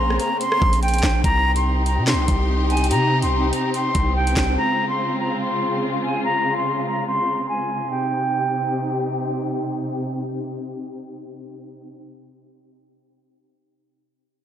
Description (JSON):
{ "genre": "hip hop, drill", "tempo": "144 BPM", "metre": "4/4", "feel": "half-time", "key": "C phrygian", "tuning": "A4 = 440 Hz", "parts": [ { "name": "breathy silver concert flute", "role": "melody", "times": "0.0-9.1 s", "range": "G5 to C6", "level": "-23 LUFS", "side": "equal", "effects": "low-pass filter, ping-pong delay" }, { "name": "warm symphonic string section", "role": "sustained chords", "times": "0.0-12.0 s", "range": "C3 to G4", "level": "-25 LUFS", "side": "equal", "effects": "low-pass filter" }, { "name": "long sustained 808-style bass", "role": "bass", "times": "0.0-4.6 s", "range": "Bb1 to C3", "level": "-21 LUFS", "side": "equal", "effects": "none" }, { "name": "drill drum kit", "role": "drums", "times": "0.1-4.5 s", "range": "handclaps, hi-hat, kick drum, rim click, snare drum", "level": "-24 LUFS", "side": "equal", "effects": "none" } ], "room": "moderate church reverb, RT60 3.6 s", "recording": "dreamy mix soaked in reverb", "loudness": "-19 LUFS", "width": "side -10 dB against mid", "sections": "0.0-1.2 A section; 1.2-7.9 B section; 7.9-11.2 C section", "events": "filter sweep 1.2-7.9", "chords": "0.0 Bbmadd9; 1.2 Cm; 4.6 Dbmaj7; 7.9 Cm" }